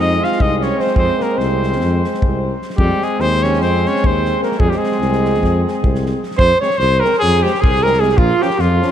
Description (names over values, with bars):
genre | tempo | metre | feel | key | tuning
balkan folk, Balkan brass band | 299 BPM (eighths) | 9/8 | straight | F minor | A4 = 440 Hz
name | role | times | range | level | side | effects
warm trumpet | melody | 0.0-8.9 s | F4 to F5 | -18 LUFS | left 1 dB | tape echo
clear alto saxophone | second line | 0.0-8.9 s | G3 to Db5 | -21 LUFS | right 5 dB | tape echo
clear French horn | accompaniment | 0.0-8.9 s | C4 to Db4 | -25 LUFS | left 6 dB | none
clear euphonium | accompaniment | 0.0-8.9 s | F3 to Ab3 | -24 LUFS | right 4 dB | none
mellow tuba | bass | 0.0-8.8 s | Bb1 to F2 | -18 LUFS | equal | none
loose indie drum kit | percussion | 0.2-8.9 s | kick drum, snare drum | -20 LUFS | equal | none
room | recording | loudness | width
moderate cathedral reverb, RT60 4.0 s | dreamy mix soaked in reverb | -13 LUFS | side -9 dB against mid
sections
0.0-6.4 A section; 6.4-8.9 B section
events
none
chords
0.0 Fm; 2.8 Ab; 4.6 Fm; 8.2 Bbm